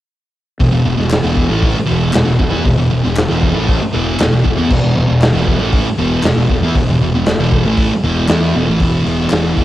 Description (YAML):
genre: garage rock duo or trio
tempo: 117 BPM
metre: 4/4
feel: straight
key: unclear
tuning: A4 = 439 Hz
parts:
  - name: thick fuzz guitar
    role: riff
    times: 0.6-9.6 s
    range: E2 to E4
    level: -14 LUFS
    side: equal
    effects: distortion, cassette tape
  - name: fuzz fingered electric bass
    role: bass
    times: 0.6-9.6 s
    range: E1 to E2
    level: -19 LUFS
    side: equal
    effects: overdrive
  - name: raw garage drum kit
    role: drums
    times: 0.6-9.6 s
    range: crash cymbal, hi-hat, kick drum, snare drum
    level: -17 LUFS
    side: equal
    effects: none
  - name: group handclap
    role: percussion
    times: 1.1-9.4 s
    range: none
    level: -30 LUFS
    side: left 3 dB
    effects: none
room: light reverb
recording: home recording on cassette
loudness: -11 LUFS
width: side -14 dB against mid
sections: 0.6-8.8 A section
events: none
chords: 0.6 E5